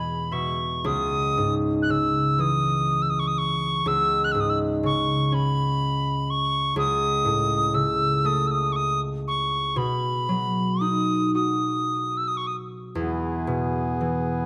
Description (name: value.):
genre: celtic folk, Celtic slow air.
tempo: 37-42 BPM (dotted quarters).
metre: 6/8.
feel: rubato.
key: unclear.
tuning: A4 = 440 Hz.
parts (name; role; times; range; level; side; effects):
bright wooden whistle; melody; 0.0-12.6 s; B5 to F#6; -27 LUFS; equal; none.
concert harp; accompaniment; 0.0-14.5 s; C#2 to G#5; -27 LUFS; equal; none.
pedal harmonium; sustained chords; 13.0-14.5 s; E3 to G#4; -31 LUFS; equal; none.
room: moderate recital hall reverb, RT60 1.8 s.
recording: none.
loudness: -24 LUFS.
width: mono.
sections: 0.8-13.0 A section; 13.0-14.5 B section.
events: harp fill 0.0-0.8.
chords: 0.0 E; 0.8 C#madd9; 3.9 C#7(no3); 6.8 A/C#; 9.8 B; 13.0 E.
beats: | 0.85 2.38 | 3.86 5.33 | 6.78 8.26 | 9.78 11.35 | 12.95.